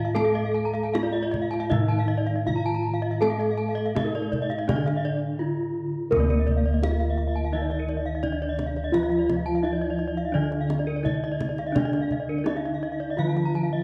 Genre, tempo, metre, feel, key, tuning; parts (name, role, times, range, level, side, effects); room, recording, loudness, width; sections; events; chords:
Balinese gamelan; 76-85 BPM; 4/4; straight; D pelog; A4 = 440 Hz
gamelan-type bronze metallophone; melody; 0.0-13.8 s; Bb3-20c to A4-30c; -32 LUFS; equal
gamelan-type bronze metallophone; accompaniment; 0.0-13.8 s; D3 to Bb3-20c; -35 LUFS; equal
gamelan-type bronze metallophone; arpeggios; 0.0-13.6 s; Bb4-20c to Bb5-20c; -36 LUFS; equal
gamelan-type bossed gongs; bass; 0.0-13.8 s; D2 to Bb4-20c; -29 LUFS; equal
gamelan-type bronze metallophone; arpeggios; 0.2-13.8 s; Bb4-20c to Bb5-20c; -36 LUFS; equal
kendang; percussion; 0.2-13.6 s; -34 LUFS; equal
light reverb; worn, warbling old tape, cassette tape, warbly pitch drift, lossy compression artefacts; -25 LUFS; mono
0.0-6.1 A section; 6.1-13.8 B section
break 5.0-6.1